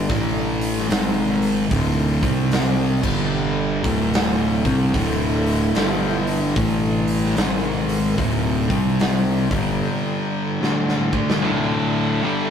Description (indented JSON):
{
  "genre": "stoner and doom metal",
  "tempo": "74 BPM",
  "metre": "4/4",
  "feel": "swing 64% on 8ths",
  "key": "unclear",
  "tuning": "A4 = 440 Hz",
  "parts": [
    { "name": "bowed-like drone", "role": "sustained chords", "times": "0.0-12.5 s", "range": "D3 to E4", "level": "-30 LUFS", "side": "right 1 dB", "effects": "built-in reverb" },
    { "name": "thick fuzz guitar", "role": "riff", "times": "0.0-12.5 s", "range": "D2 to D4", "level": "-24 LUFS", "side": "left 6 dB", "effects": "distortion" },
    { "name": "thick fuzz guitar", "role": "riff", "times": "0.0-12.5 s", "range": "D2 to D4", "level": "-25 LUFS", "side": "right 7 dB", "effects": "distortion" },
    { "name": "fuzz fingered electric bass", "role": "bass", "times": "0.0-9.8 s", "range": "D1 to C2", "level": "-23 LUFS", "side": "equal", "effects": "overdrive" },
    { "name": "big rock drum kit", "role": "drums", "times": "0.1-11.4 s", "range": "crash cymbal, hi-hat, kick drum, snare drum", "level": "-24 LUFS", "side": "equal", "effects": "none" },
    { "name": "high-gain distorted guitar", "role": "riff", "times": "11.4-12.5 s", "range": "D2 to G3", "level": "-22 LUFS", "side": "equal", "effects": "distortion" }
  ],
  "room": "light reverb",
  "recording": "rough rehearsal-room recording, tube saturation",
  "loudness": "-18 LUFS",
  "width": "side -8 dB against mid",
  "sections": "0.0-11.4 A section; 11.4-12.5 B section",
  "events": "drum fill 10.6-11.4",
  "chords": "0.1 A5; 0.9 G#5; 1.7 D5; 2.1 C5; 2.9 G5; 3.7 D5; 5.8 G5; 6.6 A5; 7.4 G#5; 8.2 D5; 8.6 C5; 9.4 G5; 10.6 D5",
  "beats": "0.10 0.91 | 1.71 2.52 3.33 4.14 | 4.94 5.75 6.56 7.37 | 8.18 8.99 9.80 10.61 | 11.42 12.23"
}